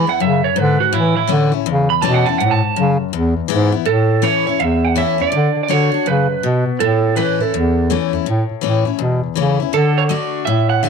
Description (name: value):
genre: rockabilly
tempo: 164 BPM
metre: 4/4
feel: swing 64% on 8ths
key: A major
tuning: A4 = 443 Hz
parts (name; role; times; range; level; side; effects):
- electric guitar through a small old amp; melody; 0.0-10.9 s; E4 to B5; -18 LUFS; right 13 dB; tape echo
- picked steel-string acoustic guitar; accompaniment; 0.0-10.9 s; E2 to F#4; -19 LUFS; left 13 dB; none
- warm bass clarinet; bass; 0.0-10.9 s; E2 to E3; -17 LUFS; equal; none
room: light reverb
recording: 1960s-style stereo with parts hard left and right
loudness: -14 LUFS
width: side -6 dB against mid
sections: 0.0-3.9 A section; 3.9-10.9 B section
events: clean electric guitar solo 0.0-3.9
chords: 0.0 E; 0.9 A; 3.1 E; 3.9 A; 5.3 D; 6.8 A; 9.7 D